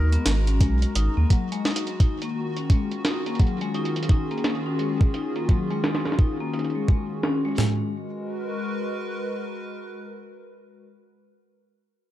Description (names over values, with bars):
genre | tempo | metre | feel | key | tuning
IDM | 86 BPM | 4/4 | swing 62% on 16ths | G# dorian | A4 = 440 Hz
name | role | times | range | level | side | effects
felt-muted upright piano | melody | 0.0-1.6 s | A#4 | -39 LUFS | left 2 dB | vintage 12-bit sampler grit, digital delay
hollow soft pad | sustained chords | 0.0-11.1 s | D#3 to A#5 | -30 LUFS | equal | chorus
vibraphone with medium mallets | arpeggios | 0.0-7.9 s | F#3 to D#4 | -29 LUFS | left 4 dB | low-pass filter, digital delay
warm sub bass | bass | 0.0-1.3 s | G#1 to D#2 | -21 LUFS | equal | none
jungle sampler-style drum kit | drums | 0.1-7.6 s | hi-hat, snare drum | -29 LUFS | right 1 dB | low-pass filter on hats, low-pass filter on perc, low-pass filter on snare, low-pass filter on room
jungle sampler-style drum kit | drums | 0.6-7.8 s | kick drum, snare drum, toms | -20 LUFS | equal | none
room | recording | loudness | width
light reverb, digital ambience | none | -22 LUFS | side -13 dB against mid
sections
0.0-7.6 A section; 7.6-10.4 B section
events
filter sweep on drum 0.0-7.6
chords
0.0 G#m9; 2.0 D#m11; 7.6 G#m9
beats
0.60 1.30 | 2.00 2.70 3.40 4.09 | 4.79 5.49 6.19 6.88 | 7.58 8.28 8.98 9.68